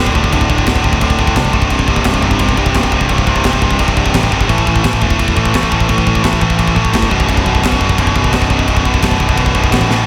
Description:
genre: heavy metal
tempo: 172 BPM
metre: 4/4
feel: straight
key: B phrygian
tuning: A4 = 444 Hz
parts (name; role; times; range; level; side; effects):
- heavy high-gain guitar; riff; 0.0-10.1 s; B1 to A3; -19 LUFS; equal; distortion
- high-gain distorted guitar; riff; 0.0-10.1 s; B1 to A3; -19 LUFS; equal; distortion
- growling picked electric bass; bass; 0.0-10.0 s; B0 to C2; -20 LUFS; equal; overdrive
- tight metal drum kit; drums; 0.1-10.0 s; crash cymbal, kick drum, snare drum; -18 LUFS; equal; none
room: little or no reverb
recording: none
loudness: -13 LUFS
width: mono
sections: 0.0-10.1 A section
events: drum fill 9.9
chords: 0.0 D5; 1.7 C5; 4.5 A5; 7.1 B5

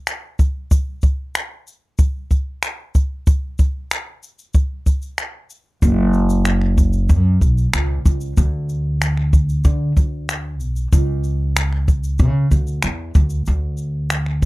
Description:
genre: acoustic pop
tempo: 94 BPM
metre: 4/4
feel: straight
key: unclear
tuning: A4 = 438 Hz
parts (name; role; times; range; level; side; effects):
- jazz brush drum kit; drums; 0.1-14.5 s; finger snaps, kick drum, shaker; -17 LUFS; equal; none
- upright bass; bass; 5.8-14.5 s; F#1 to D3; -18 LUFS; equal; none
room: little or no reverb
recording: dry, close 1970s-style studio recording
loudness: -16 LUFS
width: side -20 dB against mid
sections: 0.0-5.8 A section; 5.8-14.5 B section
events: none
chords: none

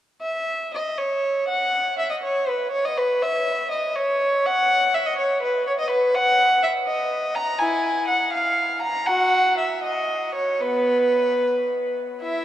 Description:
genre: classical, baroque-style suite movement for unaccompanied violin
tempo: 73-85 BPM (dotted quarters)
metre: 6/8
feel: rubato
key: B major from 6.2 s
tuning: A4 = 440 Hz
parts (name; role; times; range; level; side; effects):
- dark violin; solo; 0.2-12.4 s; B3 to A#5; -20 LUFS; equal; none
room: wet cathedral reverb, RT60 6.5 s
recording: dark, warm production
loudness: -20 LUFS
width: side -12 dB against mid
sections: 0.2-12.2 A section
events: none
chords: none

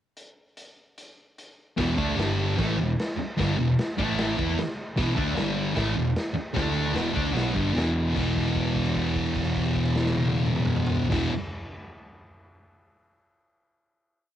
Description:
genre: garage rock duo or trio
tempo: 150 BPM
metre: 4/4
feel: straight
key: E minor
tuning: A4 = 438 Hz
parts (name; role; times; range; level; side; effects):
- raw garage drum kit; drums; 0.2-11.2 s; crash cymbal, hi-hat, kick drum, snare drum, toms; -30 LUFS; equal; cassette tape
- thick fuzz guitar; riff; 1.8-11.3 s; E2 to E4; -25 LUFS; equal; distortion, cassette tape
- picked electric bass; bass; 1.8-11.3 s; E1 to E2; -30 LUFS; equal; none
room: light reverb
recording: home recording on cassette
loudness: -23 LUFS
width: side -11 dB against mid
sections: 0.2-1.8 pickup bar; 1.8-8.1 riff; 8.1-11.4 final chord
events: held note 8.1-11.1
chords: 0.2 N.C.; 1.8 E5; 2.2 G5; 2.6 Em; 4.0 A5; 4.4 E5; 5.4 G5; 5.8 E5; 6.6 D5; 7.0 Em; 8.1 E5

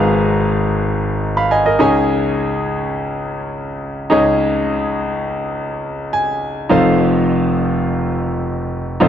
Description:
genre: pop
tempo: 104 BPM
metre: 4/4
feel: straight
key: unclear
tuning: A4 = 439 Hz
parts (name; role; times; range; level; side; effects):
- clear concert grand piano; solo; 0.0-9.1 s; F1 to Cb6; -15 LUFS; equal; none
room: light reverb, small room reverb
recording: dry, close 1970s-style studio recording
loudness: -15 LUFS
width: side -9 dB against mid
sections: 0.0-6.7 A section; 6.7-9.1 B section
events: grand piano fill 1.2-2.1, 5.8-6.7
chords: 0.0 Abm6; 1.8 Dbsus2; 6.7 F7

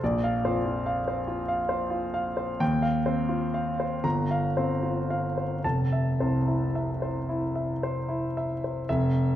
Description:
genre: classical, impressionist solo piano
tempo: 35-48 BPM (dotted quarters)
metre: 6/8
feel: rubato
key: unclear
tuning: A4 = 441 Hz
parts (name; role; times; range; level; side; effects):
- clear grand piano; solo; 0.0-9.4 s; F1 to Bb5; -25 LUFS; equal; none
room: wet recital hall reverb, RT60 1.4 s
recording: dark, warm production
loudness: -25 LUFS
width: side -12 dB against mid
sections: 0.0-8.9 A section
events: none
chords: 0.0 Bbadd9; 2.6 Eb69; 4.0 Gm7; 5.6 Fmaj7

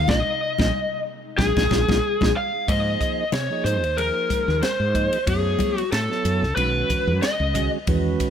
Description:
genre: electric jazz fusion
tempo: 92 BPM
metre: 4/4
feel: swing 56% on 16ths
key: unclear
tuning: A4 = 440 Hz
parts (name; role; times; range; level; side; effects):
- lead guitar through a small cranked amp; melody; 0.0-7.7 s; Ab4 to F5; -23 LUFS; left 2 dB; overdrive, tape echo
- ethereal airy pad; sustained chords; 0.0-2.6 s; C3 to Eb4; -40 LUFS; left 4 dB; none
- woody fretless electric bass; bass; 0.0-8.1 s; Bb1 to C3; -24 LUFS; equal; none
- mellow tonewheel organ; accompaniment; 0.1-8.3 s; D#3 to Eb5; -28 LUFS; right 6 dB; slow rotary speaker
- crisp fusion drum kit; drums; 0.1-8.3 s; hi-hat, kick drum, ride cymbal, snare drum; -27 LUFS; equal; none
- congas; percussion; 0.1-8.0 s; none; -29 LUFS; left 3 dB; none
room: light reverb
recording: none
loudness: -20 LUFS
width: side -8 dB against mid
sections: 0.0-2.7 A section; 2.7-8.3 B section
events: band accent 0.1-2.7; drum fill 2.4-2.7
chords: 0.0 Bb9sus4; 2.7 Abadd9; 5.3 Gbm9; 6.6 Badd9

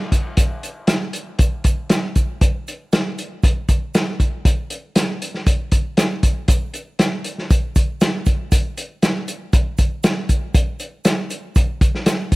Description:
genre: rock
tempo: 118 BPM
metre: 4/4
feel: straight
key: none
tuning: none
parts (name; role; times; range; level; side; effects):
- vintage drum kit; drums; 0.1-12.4 s; hi-hat, kick drum, snare drum; -16 LUFS; equal; none
- egg shaker; percussion; 0.1-12.4 s; none; -34 LUFS; right 5 dB; none
room: little or no reverb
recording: none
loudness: -17 LUFS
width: side -21 dB against mid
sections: 0.0-12.4 A section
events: none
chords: none

